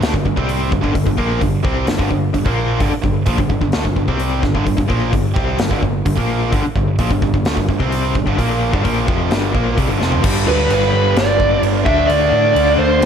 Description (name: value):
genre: hard rock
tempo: 129 BPM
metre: 4/4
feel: straight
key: unclear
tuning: A4 = 440 Hz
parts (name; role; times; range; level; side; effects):
- biting overdriven guitar; riff; 0.0-13.1 s; F2 to D4; -21 LUFS; left 12 dB; tremolo
- tight distorted guitar; riff; 0.0-13.1 s; F2 to D4; -21 LUFS; right 10 dB; distortion
- overdriven picked electric bass; bass; 0.0-13.1 s; F1 to A2; -20 LUFS; equal; none
- big rock drum kit; drums; 0.0-13.1 s; crash cymbal, hi-hat, kick drum, snare drum, toms; -20 LUFS; equal; none
- bluesy overdriven lead guitar; melody; 10.5-13.1 s; B4 to E5; -15 LUFS; right 2 dB; distortion
room: moderate large studio reverb, RT60 1.3 s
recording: none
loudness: -14 LUFS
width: side -8 dB against mid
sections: 0.0-10.2 A section; 10.2-13.1 B section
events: drum fill 10.0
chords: 0.0 G5; 10.2 G; 11.9 D5